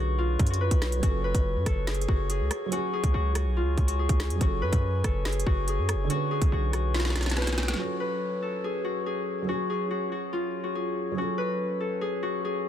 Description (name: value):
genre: hip hop, drill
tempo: 142 BPM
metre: 4/4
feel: half-time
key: F# minor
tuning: A4 = 439 Hz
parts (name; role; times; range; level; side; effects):
- Celtic harp; melody; 0.0-12.7 s; E#4 to B4; -30 LUFS; left 3 dB; none
- felt-muted upright piano; accompaniment; 0.0-12.7 s; D3 to B4; -36 LUFS; right 6 dB; none
- chamber organ, stopped flute; sustained chords; 0.0-12.7 s; F#3 to C#6; -39 LUFS; left 2 dB; none
- hard-hitting 808-style bass; bass; 0.0-7.8 s; F#1 to F#2; -27 LUFS; equal; none
- drill drum kit; drums; 0.4-7.8 s; hi-hat, kick drum, rim click, snare drum; -27 LUFS; equal; soft clipping on snare
room: little or no reverb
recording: dense, heavily limited modern master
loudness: -25 LUFS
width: side -10 dB against mid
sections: 0.0-7.8 A section; 7.8-12.7 B section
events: drum fill 6.9-7.8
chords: 0.0 Bmadd9; 1.0 F#m; 2.7 C#sus4; 4.4 F#m; 6.1 Bmadd9; 7.8 F#m; 9.5 C#sus4; 11.2 F#m